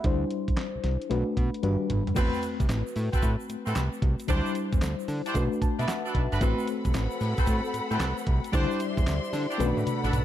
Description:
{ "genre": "R&B, new jack swing", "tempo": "113 BPM", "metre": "4/4", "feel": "swing 66% on 16ths", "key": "A dorian", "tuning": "A4 = 439 Hz", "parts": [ { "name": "FM electric piano with auto-pan", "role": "accompaniment", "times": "0.0-10.2 s", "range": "F#3 to A5", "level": "-30 LUFS", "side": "left 3 dB", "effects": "none" }, { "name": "fat analog bass", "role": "bass", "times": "0.0-10.2 s", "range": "G1 to D3", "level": "-28 LUFS", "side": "right 1 dB", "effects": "none" }, { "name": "clean 12-bit digital drum machine", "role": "drums", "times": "0.0-10.2 s", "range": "crash cymbal, handclaps, hi-hat, kick drum, snare drum, toms", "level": "-28 LUFS", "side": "right 1 dB", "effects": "none" }, { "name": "warm horn section", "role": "stabs", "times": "2.2-10.2 s", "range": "C4 to C5", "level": "-35 LUFS", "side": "right 1 dB", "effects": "ping-pong delay" }, { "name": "egg shaker", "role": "percussion", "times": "2.2-10.2 s", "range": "none", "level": "-49 LUFS", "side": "right 15 dB", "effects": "none" }, { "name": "warm studio string section", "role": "sustained chords", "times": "6.4-10.2 s", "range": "C4 to C6", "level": "-34 LUFS", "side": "left 2 dB", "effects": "none" } ], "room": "light reverb, digital ambience", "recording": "dark, warm production", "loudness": "-25 LUFS", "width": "side -12 dB against mid", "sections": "0.0-2.2 A section; 2.2-10.2 B section", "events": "drum fill 1.6-2.2, 9.6-10.2; FM electric piano fill 5.3-6.4", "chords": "0.0 D9sus4; 1.1 Bm7; 1.6 Gmaj7; 2.2 Am69; 4.3 D9sus4; 5.3 Bm7; 6.4 Am69; 8.5 D9sus4; 9.6 Bm7", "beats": "| 0.04 0.57 1.10 1.63 | 2.16 2.69 3.23 3.76 | 4.29 4.82 5.35 5.88 | 6.41 6.94 7.47 8.00 | 8.54 9.07 9.60 10.13" }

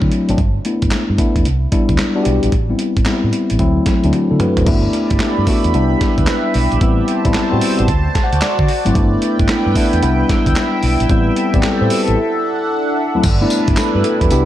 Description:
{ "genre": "R&B, new jack swing", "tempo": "112 BPM", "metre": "4/4", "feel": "swing 64% on 16ths", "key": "G major", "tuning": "A4 = 441 Hz", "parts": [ { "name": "mellow tine electric piano", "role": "accompaniment", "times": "0.0-14.5 s", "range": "D2 to A5", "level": "-16 LUFS", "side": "left 2 dB", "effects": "none" }, { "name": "vintage muted fingered electric bass", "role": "bass", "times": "0.0-14.5 s", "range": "G1 to D3", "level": "-18 LUFS", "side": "right 1 dB", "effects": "none" }, { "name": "dusty soul sampler-style drum kit", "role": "drums", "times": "0.0-14.5 s", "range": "crash cymbal, handclaps, hi-hat, kick drum, snare drum, tambourine, toms", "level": "-18 LUFS", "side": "right 1 dB", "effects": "none" }, { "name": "phased analog pad", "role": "sustained chords", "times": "4.9-14.5 s", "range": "C3 to B5", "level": "-21 LUFS", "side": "right 2 dB", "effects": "phaser, chorus" } ], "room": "light reverb", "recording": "dark, warm production", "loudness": "-13 LUFS", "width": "side -13 dB against mid", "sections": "0.0-4.7 A section; 4.7-13.2 B section; 13.2-14.5 C section", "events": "drum fill 4.1-4.7; tine electric piano fill 7.9-9.0; break 12.2-13.2", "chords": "0.4 G6; 1.5 Cmaj7; 2.5 Am7; 3.6 D7; 4.7 G6; 5.7 Cmaj7; 6.8 Am7; 7.9 D7; 9.0 G6; 10.0 Cmaj7; 11.1 Am7; 12.2 D; 13.2 G6", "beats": "| 0.38 0.92 1.45 1.99 | 2.52 3.06 3.60 4.13 | 4.67 5.20 5.74 6.28 | 6.81 7.35 7.88 8.42 | 8.95 9.49 10.03 10.56 | 11.10 11.63 12.17 12.70 | 13.24 13.78 14.31" }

